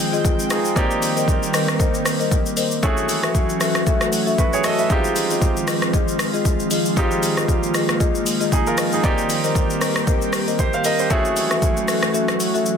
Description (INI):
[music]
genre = amapiano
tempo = 116 BPM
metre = 4/4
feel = swing 55% on 16ths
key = unclear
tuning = A4 = 439 Hz
[part]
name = clear concert grand piano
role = accompaniment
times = 0.0-12.8 s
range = G3 to F5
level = -24 LUFS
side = right 4 dB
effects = none
[part]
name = airy breathy pad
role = sustained chords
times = 0.0-12.8 s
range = Eb3 to G5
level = -24 LUFS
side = right 1 dB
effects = chorus, sidechain pumping
[part]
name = marimba with soft mallets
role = stabs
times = 0.1-12.8 s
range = F4 to Fb5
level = -24 LUFS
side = left 6 dB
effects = ping-pong delay
[part]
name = deep house drum kit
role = drums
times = 0.1-12.8 s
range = hi-hat, kick drum, rim click, shaker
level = -21 LUFS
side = equal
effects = none
[sound]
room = light reverb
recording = dense, heavily limited modern master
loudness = -17 LUFS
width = side -7 dB against mid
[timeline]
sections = 0.0-12.8 A section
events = kick muted 12.1-12.8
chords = 0.0 Fm7; 0.8 Cm7; 2.8 Gbm7; 4.9 Fm7; 9.0 Cm7; 11.1 Gbm7